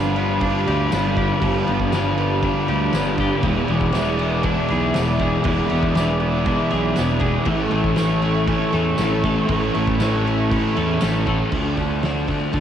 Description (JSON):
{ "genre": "rock, shoegaze and dream pop", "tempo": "119 BPM", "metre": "4/4", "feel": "straight", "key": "unclear", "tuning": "A4 = 436 Hz", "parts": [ { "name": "dark analog pad", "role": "sustained chords", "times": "0.0-11.5 s", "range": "G4 to D6", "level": "-26 LUFS", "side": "equal", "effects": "chorus, cassette tape" }, { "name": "twangy electric guitar", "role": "arpeggios", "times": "0.0-12.6 s", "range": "E3 to A4", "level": "-30 LUFS", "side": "left 4 dB", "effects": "wide subtle chorus, cassette tape, tape echo" }, { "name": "biting overdriven guitar", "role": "riff", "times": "0.0-12.6 s", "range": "D3 to D5", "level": "-25 LUFS", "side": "right 12 dB", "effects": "reverse reverb, cassette tape" }, { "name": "thick fuzz guitar", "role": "riff", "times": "0.0-12.6 s", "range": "E2 to D4", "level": "-23 LUFS", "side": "left 6 dB", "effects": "distortion, lush chorus, cassette tape" }, { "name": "fuzz fingered electric bass", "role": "bass", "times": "0.0-12.6 s", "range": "E1 to D3", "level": "-24 LUFS", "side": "equal", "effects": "overdrive, transformer saturation" }, { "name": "loose indie drum kit", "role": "drums", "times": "0.2-12.6 s", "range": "crash cymbal, hi-hat, kick drum, snare drum", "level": "-26 LUFS", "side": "equal", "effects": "cassette tape" }, { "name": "tambourine", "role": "percussion", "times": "0.9-11.1 s", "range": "none", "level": "-40 LUFS", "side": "right 8 dB", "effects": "none" } ], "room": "light reverb", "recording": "home recording on cassette", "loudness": "-17 LUFS", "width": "side -9 dB against mid", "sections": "0.0-11.5 A section; 11.5-12.6 B section", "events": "none", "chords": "0.0 G7; 3.4 E7; 7.5 A; 11.5 Dm" }